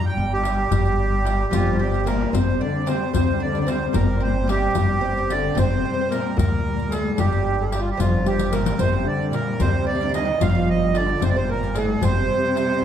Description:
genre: Arabic maqam ensemble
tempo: 74 BPM (dotted quarters)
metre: 6/8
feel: straight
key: G maqam bayati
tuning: A4 = 440 Hz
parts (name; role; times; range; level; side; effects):
- accordion; melody; 0.0-12.8 s; F4 to G5; -25 LUFS; right 5 dB; none
- upright bass; bass; 0.0-12.3 s; G1 to G2; -26 LUFS; equal; none
- warm duduk; drone; 0.0-12.8 s; G3; -31 LUFS; left 3 dB; none
- darbuka; percussion; 0.3-12.7 s; none; -26 LUFS; left 3 dB; none
- riq; percussion; 0.5-12.7 s; none; -31 LUFS; left 5 dB; none
- oud; second line; 1.5-12.8 s; F3 to F4; -29 LUFS; right 2 dB; none
- warm chamber cello section; second line; 1.5-12.8 s; F2 to F3; -26 LUFS; left 2 dB; none
room: moderate recital hall reverb, RT60 1.5 s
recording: dark, warm production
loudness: -19 LUFS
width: side -9 dB against mid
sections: 0.0-2.3 A section; 2.3-12.8 B section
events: drum fill 1.8-2.3, 8.3-8.8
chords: none

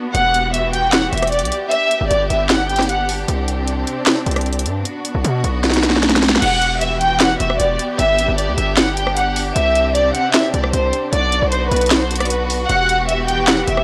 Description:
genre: hip hop, trap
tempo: 153 BPM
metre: 4/4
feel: half-time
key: E minor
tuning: A4 = 440 Hz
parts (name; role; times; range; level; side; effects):
- warm symphonic string section; sustained chords; 0.0-13.8 s; C3 to G4; -26 LUFS; equal; none
- dark studio violin section; melody; 0.1-3.1, 6.4-13.8 s; B4 to G5; -20 LUFS; equal; low-pass filter
- distorted 808-style bass; bass; 0.1-13.8 s; E1 to B2; -24 LUFS; equal; distortion
- trap drum kit; drums; 0.1-13.8 s; crash cymbal, handclaps, hi-hat, rim click, snare drum; -20 LUFS; equal; overdrive, vintage 12-bit sampler grit
room: little or no reverb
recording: dry, gritty hardware recording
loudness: -17 LUFS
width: mono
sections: 0.0-6.4 A section; 6.4-13.8 B section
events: drum fill 5.6-6.4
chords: 0.1 Emadd9; 1.7 G; 3.3 Csus2; 4.9 Bm; 6.4 Emadd9; 8.0 G; 9.6 Csus2; 11.1 Bm; 12.7 Emadd9

